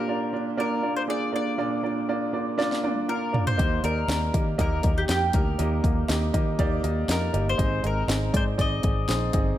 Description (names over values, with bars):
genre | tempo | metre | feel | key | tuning
piano-driven pop | 120 BPM | 4/4 | straight | Eb major | A4 = 440 Hz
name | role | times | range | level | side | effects
mandolin | melody | 0.0-9.6 s | G4 to Eb5 | -30 LUFS | left 2 dB | none
clear concert grand piano | accompaniment | 0.0-9.6 s | Ab2 to F5 | -27 LUFS | right 2 dB | none
house drum kit | drums | 2.6-9.5 s | hi-hat, kick drum, snare drum, toms | -26 LUFS | left 1 dB | overdrive
vintage muted fingered electric bass | bass | 3.6-9.5 s | G1 to Eb3 | -27 LUFS | left 1 dB | none
room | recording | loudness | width
light reverb, digital ambience | none | -22 LUFS | side -12 dB against mid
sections
0.0-9.6 A section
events
drum fill 2.6-3.6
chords
0.0 Bb; 3.6 Eb; 7.6 Ab